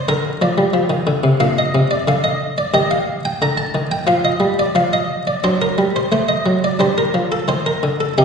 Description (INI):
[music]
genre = classical, baroque-style suite movement for harpsichord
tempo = 89 BPM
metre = 4/4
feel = rubato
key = unclear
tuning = A4 = 440 Hz
[part]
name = buff-stop harpsichord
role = solo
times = 0.0-8.2 s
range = Bb2 to Bb5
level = -15 LUFS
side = equal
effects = none
[sound]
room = wet recital hall reverb, RT60 1.6 s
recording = recorded in a church or concert hall, nothing above 10.7 kHz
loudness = -15 LUFS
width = side -6 dB against mid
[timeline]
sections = 0.0-8.2 A section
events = none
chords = 0.0 Bb; 1.4 Bbadd11; 2.7 Ebmaj9#11; 4.1 Ebmaj9/F; 5.4 D/F#; 6.8 G5